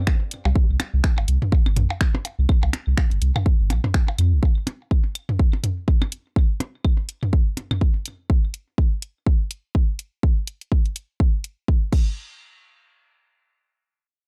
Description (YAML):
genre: minimal techno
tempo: 124 BPM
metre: 4/4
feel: swing 58% on 16ths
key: unclear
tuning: A4 = 444 Hz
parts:
  - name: hollow square pluck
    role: riff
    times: 0.0-0.5 s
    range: G3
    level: -37 LUFS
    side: equal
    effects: chorus, sidechain pumping, tape echo
  - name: airy breathy pad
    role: texture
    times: 0.0-0.6 s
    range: C4 to F5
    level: -56 LUFS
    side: equal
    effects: none
  - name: electronic kick drum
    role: drums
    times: 0.1-12.0 s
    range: none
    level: -21 LUFS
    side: equal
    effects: none
  - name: house drum kit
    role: drums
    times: 0.1-12.0 s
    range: crash cymbal, finger snaps, hi-hat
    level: -32 LUFS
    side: equal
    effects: none
  - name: electronic percussion blips, claves and toms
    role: percussion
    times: 0.1-7.8 s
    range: none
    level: -28 LUFS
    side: equal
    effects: delay
  - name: round analog bass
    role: bass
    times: 0.5-4.4 s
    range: G1 to F2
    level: -22 LUFS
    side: equal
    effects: tube saturation, sidechain pumping
room: little or no reverb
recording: dark, warm production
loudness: -22 LUFS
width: mono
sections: 0.0-12.2 A section; 12.2-14.3 B section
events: none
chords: 0.0 Csus4; 11.9 N.C.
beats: 0.07 | 0.56 1.04 1.52 2.01 | 2.49 2.97 3.46 3.94 | 4.43 4.91 5.39 5.88 | 6.36 6.84 7.33 7.81 | 8.30 8.78 9.26 9.75 | 10.23 10.72 11.20 11.68